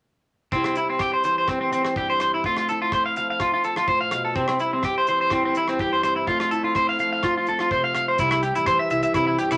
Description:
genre	highlife guitar band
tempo	125 BPM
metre	4/4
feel	straight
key	C major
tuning	A4 = 440 Hz
part	picked acoustic archtop guitar	accompaniment	0.5-9.6 s	F2 to F4	-30 LUFS	equal	none
part	electric guitar at the edge of break-up	arpeggios	0.5-9.6 s	C4 to F5	-24 LUFS	equal	none
part	damped 70s drum kit	drums	0.5-9.6 s	hi-hat, kick drum, rim click	-34 LUFS	equal	none
part	fingered electric bass	bass	8.2-9.6 s	A1 to C3	-34 LUFS	equal	none
room	moderate studio ambience, RT60 0.5 s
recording	none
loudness	-23 LUFS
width	mono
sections	0.5-8.2 A section; 8.2-9.6 B section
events	none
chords	0.5 C; 2.5 F; 4.4 C; 6.3 F; 8.2 C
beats	| 0.53 1.01 1.49 1.97 | 2.45 2.93 3.41 3.89 | 4.37 4.85 5.33 5.80 | 6.28 6.76 7.24 7.72 | 8.20 8.68 9.15

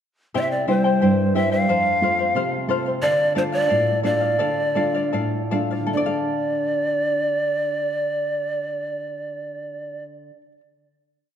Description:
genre	andean folk, Andean ensemble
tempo	72-90 BPM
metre	2/4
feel	straight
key	D minor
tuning	A4 = 440 Hz
part	charango	accompaniment	0.3-10.6 s	E4 to G5	-26 LUFS	left 5 dB	none
part	nylon-string guitar	accompaniment	0.3-10.6 s	F2 to A4	-24 LUFS	equal	none
part	breathy bright large pan pipes	melody	0.4-10.0 s	C5 to F5	-22 LUFS	right 1 dB	none
room	wet concert hall reverb, RT60 1.8 s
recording	dark, warm production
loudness	-19 LUFS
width	side -9 dB against mid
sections	0.3-5.9 A section; 5.9-9.3 final chord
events	slowing down 3.0-5.9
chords	0.3 C; 1.7 F; 3.0 Dm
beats	| 0.35 1.01 | 1.68 2.35 | 3.02 3.69 | 4.39 5.13 | 5.93 6.77 | 7.60 8.44

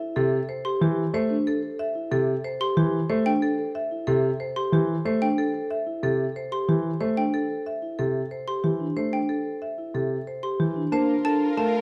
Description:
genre	classical, minimalist pattern music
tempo	184 BPM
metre	6/4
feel	straight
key	G dorian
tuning	A4 = 440 Hz
part	marimba with medium hard mallets	melody	0.0-11.8 s	G4 to F5	-33 LUFS	equal	none
part	vibraphone with soft mallets	arpeggios	0.0-11.8 s	D4 to Bb4	-30 LUFS	equal	none
part	dark concert grand piano	accompaniment	0.2-11.8 s	C3 to Bb3	-27 LUFS	equal	none
part	xylophone with rubber mallets	arpeggios	0.6-11.8 s	G5 to C6	-34 LUFS	equal	none
part	mellow wooden-headed alto flute	second line	10.9-11.8 s	Bb4	-36 LUFS	equal	none
part	clear studio string section	sustained chords	10.9-11.8 s	F4 to Bb4	-37 LUFS	equal	none
room	light reverb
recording	dark, warm production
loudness	-25 LUFS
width	mono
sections	0.0-10.9 A section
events	none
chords	0.0 Gsus4; 10.9 Gm9 (rootless)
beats	0.16 0.49 0.81 | 1.14 1.47 1.79 2.12 2.44 2.77 | 3.10 3.42 3.75 4.07 4.40 4.73 | 5.05 5.38 5.71 6.03 6.36 6.68 | 7.01 7.33 7.66 7.99 8.31 8.64 | 8.97 9.29 9.62 9.94 10.27 10.60 | 10.92 11.25 11.57

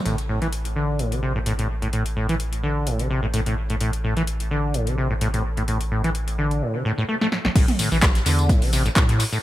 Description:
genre	acid house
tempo	128 BPM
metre	4/4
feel	swing 54% on 16ths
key	A minor pentatonic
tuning	A4 = 440 Hz
part	acid bass, saw	riff	0.1-9.4 s	A1 to A3	-23 LUFS	equal	lush chorus, sidechain pumping, tape echo
part	saturated sub bass	bass	0.1-9.2 s	A1 to A2	-25 LUFS	equal	tube saturation, sidechain pumping
part	electro analog drum machine	drums	0.1-9.4 s	crash cymbal, handclaps, hi-hat, snare drum, tambourine, toms	-26 LUFS	equal	analog delay
part	electronic kick drum	drums	7.6-9.1 s	none	-18 LUFS	equal	overdrive
part	huge arena drum kit	drums	7.6-9.3 s	ride cymbal, snare drum	-37 LUFS	right 1 dB	none
room	light reverb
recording	echo-heavy mix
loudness	-20 LUFS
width	side -15 dB against mid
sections	0.1-7.6 A section; 7.6-9.4 B section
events	filter sweep on acid bass 0.1-7.6; drum fill 7.2-7.6; drop 7.6-9.4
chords	0.1 N.C.; 7.6 A5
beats	| 0.06 0.52 0.99 1.46 | 1.93 2.40 2.87 3.34 | 3.81 4.27 4.74 5.21 | 5.68 6.15 6.62 7.09 | 7.56 8.02 8.49 8.96

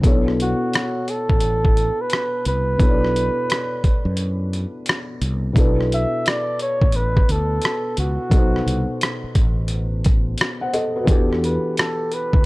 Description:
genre	lo-fi hip hop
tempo	87 BPM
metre	4/4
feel	swing 64% on 16ths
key	B minor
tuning	A4 = 440 Hz
part	felt-muted upright piano	accompaniment	0.0-12.5 s	B2 to F#5	-25 LUFS	left 1 dB	cassette tape, low-pass filter
part	mellow fretless electric bass	bass	0.0-12.5 s	A1 to F#2	-22 LUFS	equal	none
part	dusty soul sampler-style drum kit	drums	0.0-12.4 s	hi-hat, kick drum, rim click	-18 LUFS	equal	none
part	breathy flugelhorn	melody	0.4-12.5 s	F#4 to E5	-24 LUFS	right 1 dB	low-pass filter, tape echo
room	digital ambience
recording	dry, gritty hardware recording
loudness	-17 LUFS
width	side -21 dB against mid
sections	0.0-5.6 A section; 5.6-12.5 B section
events	break 4.2-5.6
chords	0.0 Bm11; 8.3 B7b9; 11.1 Em11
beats	| 0.04 0.73 1.42 2.11 | 2.80 3.49 4.18 4.87 | 5.56 6.25 6.93 7.62 | 8.31 9.00 9.69 10.38 | 11.07 11.76 12.45

